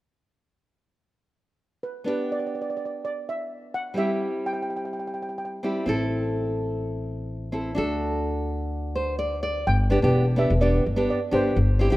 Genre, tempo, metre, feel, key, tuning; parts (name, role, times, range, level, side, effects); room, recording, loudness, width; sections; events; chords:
calypso; 126 BPM; 4/4; straight; G major; A4 = 440 Hz
steel pan; melody; 1.8-5.5, 9.7-12.0 s; B4 to G5; -30 LUFS; right 1 dB
nylon-string guitar; accompaniment; 2.0-12.0 s; G3 to D5; -26 LUFS; equal
upright bass; bass; 5.9-12.0 s; E1 to D2; -25 LUFS; equal
light reverb, small room ambience; rough home demo mix; -23 LUFS; side -17 dB against mid
0.2-2.1 A section; 2.1-9.7 B section; 9.7-12.0 C section
nylon-string guitar fill 8.7-9.7
0.2 N.C.; 2.1 G; 4.0 C/G; 5.9 Am; 7.8 D; 9.7 G